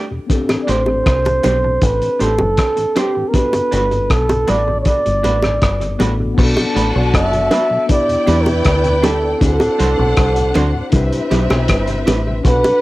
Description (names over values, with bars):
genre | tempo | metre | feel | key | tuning
lovers rock reggae | 79 BPM | 4/4 | straight | A dorian | A4 = 438 Hz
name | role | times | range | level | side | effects
mellow tine electric piano | accompaniment | 0.0-12.8 s | B3 to B4 | -24 LUFS | left 3 dB | auto-pan, cassette tape, plate reverb
electric guitar at the edge of break-up | stabs | 0.0-12.2 s | D4 to C5 | -26 LUFS | right 4 dB | tube saturation, tremolo, cassette tape, analog delay, plate reverb
mellow tonewheel organ | accompaniment | 0.1-12.7 s | D2 to G4 | -27 LUFS | left 1 dB | none
cloth-damped thuddy drum kit | drums | 0.3-12.8 s | crash cymbal, hi-hat, kick drum, rim click | -19 LUFS | equal | cassette tape, analog delay
bongos | percussion | 0.5-12.8 s | none | -21 LUFS | right 1 dB | analog delay
breathy flugelhorn | melody | 0.6-12.8 s | G4 to E5 | -17 LUFS | right 1 dB | cassette tape, tape echo, plate reverb
deep dub fingered electric bass | bass | 0.7-12.6 s | F#1 to E2 | -18 LUFS | equal | none
warm symphonic string section | second line | 6.4-12.8 s | C4 to A5 | -22 LUFS | left 1 dB | cassette tape, plate reverb
room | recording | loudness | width
light reverb | home recording on cassette | -13 LUFS | side -18 dB against mid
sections
0.0-6.4 A section; 6.4-12.8 B section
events
none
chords
0.3 Am11; 3.3 Gmaj7; 6.4 Bm7; 7.9 Em7; 9.4 D7; 10.9 Cmaj7